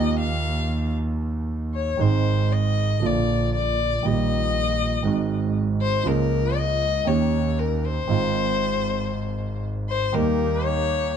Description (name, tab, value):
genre	tango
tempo	117 BPM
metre	4/4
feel	rubato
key	Ab major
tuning	A4 = 439 Hz
part	warm violin	second line	0.0-11.2 s	Bb4 to F5	-25 LUFS	left 7 dB	none
part	warm grand piano	accompaniment	0.0-11.1 s	Ab1 to Ab4	-24 LUFS	right 5 dB	none
part	clear double bass	bass	0.0-11.1 s	Ab1 to Eb2	-26 LUFS	equal	none
part	bandoneon	stabs	10.1-11.1 s	Bb3 to G4	-33 LUFS	right 4 dB	none
room	light reverb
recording	dark, warm production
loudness	-21 LUFS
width	side -8 dB against mid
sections	0.0-11.2 A section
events	violin solo 0.0-11.2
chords	0.0 Ebadd9; 2.0 Ab; 3.0 Bb; 4.0 Eb/Bb; 5.1 Ab7; 6.1 Db6; 7.1 Eb7; 8.1 Ab6; 10.1 Eb